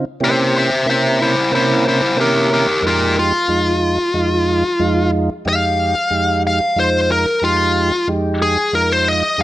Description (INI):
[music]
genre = blues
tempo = 92 BPM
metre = 4/4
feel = straight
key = F minor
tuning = A4 = 440 Hz
[part]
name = mellow tonewheel organ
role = accompaniment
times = 0.0-9.4 s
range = F2 to Bb4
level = -18 LUFS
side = right 2 dB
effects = slow rotary speaker
[part]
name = smooth overdriven lead guitar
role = melody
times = 0.2-9.4 s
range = E4 to F5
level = -15 LUFS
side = left 1 dB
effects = none
[sound]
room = moderate studio reverb, RT60 0.7 s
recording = none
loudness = -14 LUFS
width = side -15 dB against mid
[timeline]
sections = 0.0-8.1 A section; 8.1-9.4 B section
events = lead electric guitar solo 8.1-9.4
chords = 0.2 C7b9; 2.8 Fm7